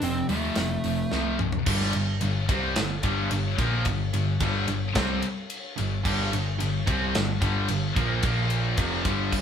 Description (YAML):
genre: hard rock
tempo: 110 BPM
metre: 4/4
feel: straight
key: G minor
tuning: A4 = 440 Hz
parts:
  - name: dark smooth lead guitar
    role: melody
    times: 0.0-1.4 s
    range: A3 to C4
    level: -29 LUFS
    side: right 1 dB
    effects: overdrive
  - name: crunchy overdriven guitar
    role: riff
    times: 0.0-9.3 s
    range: F2 to C4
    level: -32 LUFS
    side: equal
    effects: none
  - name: overdriven electric guitar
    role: riff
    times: 0.0-9.3 s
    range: F2 to C4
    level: -32 LUFS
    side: right 4 dB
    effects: none
  - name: scooped high-gain guitar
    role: riff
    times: 0.0-9.3 s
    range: F2 to C4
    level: -30 LUFS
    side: left 7 dB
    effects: distortion
  - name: hollow-body short-scale picked electric bass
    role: bass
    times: 0.0-9.3 s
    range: F1 to Eb2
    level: -29 LUFS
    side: equal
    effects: none
  - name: tight metal drum kit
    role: drums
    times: 0.0-9.4 s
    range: crash cymbal, hi-hat, kick drum, ride cymbal, snare drum, toms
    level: -29 LUFS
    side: equal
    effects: none
room: moderate studio reverb, RT60 0.8 s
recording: band playing live in one room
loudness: -23 LUFS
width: side -8 dB against mid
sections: 0.0-1.7 A section; 1.7-9.4 B section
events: drum fill 1.1-1.7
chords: 0.0 F; 1.7 Gm; 8.2 Bb5; 8.8 G5